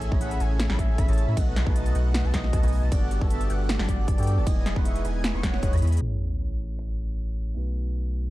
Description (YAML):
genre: future bass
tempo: 155 BPM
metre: 4/4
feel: half-time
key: A lydian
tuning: A4 = 439 Hz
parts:
  - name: warm velvety synth lead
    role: melody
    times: 0.0-5.9 s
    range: C#5 to F#5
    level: -37 LUFS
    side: equal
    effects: chorus, sidechain pumping, ping-pong delay
  - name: bright tine electric piano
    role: accompaniment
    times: 0.0-8.3 s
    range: G3 to C#5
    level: -36 LUFS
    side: right 3 dB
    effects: medium stereo tremolo, sidechain pumping
  - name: airy dreamy lead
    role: arpeggios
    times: 0.0-6.0 s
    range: F#5 to C#6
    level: -40 LUFS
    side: right 1 dB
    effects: chorus, cassette tape, sidechain pumping, tape echo
  - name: dense compressed supersaw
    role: riff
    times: 0.0-6.0 s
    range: B3 to C#6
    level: -36 LUFS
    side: equal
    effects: cassette tape, sidechain pumping
  - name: saturated sub bass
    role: bass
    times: 0.0-8.3 s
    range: E1 to A2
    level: -25 LUFS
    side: equal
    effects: sidechain pumping
  - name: big-room dance drum kit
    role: drums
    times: 0.0-8.2 s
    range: finger snaps, hi-hat, ride cymbal, snare drum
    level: -32 LUFS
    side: equal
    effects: none
  - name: electronic kick drum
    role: drums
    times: 0.1-5.7 s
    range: none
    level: -25 LUFS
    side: equal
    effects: none
  - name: sub drop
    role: sound effects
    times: 6.0-7.6 s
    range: none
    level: -33 LUFS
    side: equal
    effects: none
room: digital ambience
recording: dark, warm production, low-pass filter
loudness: -22 LUFS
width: side -17 dB against mid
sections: 0.0-6.0 A section; 6.0-8.3 B section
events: drop 0.0-6.0; drum fill 5.8; impact 6.0-7.6; filter sweep 6.0-8.3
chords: 0.0 Amaj7; 1.4 B7; 2.9 Gmaj9; 4.5 Emaj7; 6.0 Amaj7; 7.6 B7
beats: 0.21 0.60 0.98 | 1.37 1.76 2.14 2.53 | 2.92 3.31 3.69 4.08 | 4.47 4.85 5.24 5.63 | 6.01 6.40 6.79 7.18 | 7.56 7.95